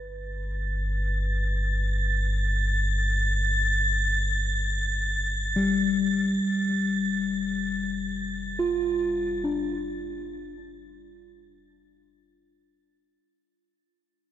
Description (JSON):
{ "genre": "ambient", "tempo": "free time", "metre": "none", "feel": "none", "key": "unclear", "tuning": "A4 = 440 Hz", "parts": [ { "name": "muted felt-like synth keys", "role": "arpeggios", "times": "0.0-13.3 s", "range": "G3 to B4", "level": "-27 LUFS", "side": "left 2 dB", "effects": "chorus, diffuse ambient delay" }, { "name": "warm sub bass", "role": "bass", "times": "0.0-13.2 s", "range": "F1 to G1", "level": "-29 LUFS", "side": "equal", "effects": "none" }, { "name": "wind-like tuned noise texture", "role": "texture", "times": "0.3-13.3 s", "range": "A6", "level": "-29 LUFS", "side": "right 1 dB", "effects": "built-in reverb" } ], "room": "moderate huge ambient reverb, RT60 7.2 s", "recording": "dark, warm production", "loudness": "-24 LUFS", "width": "side -11 dB against mid", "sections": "0.0-13.2 A section", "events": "fade-out on sub bass 0.0-13.2; fade-out 4.2-13.2", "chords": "0.0 Gadd9; 6.4 F6" }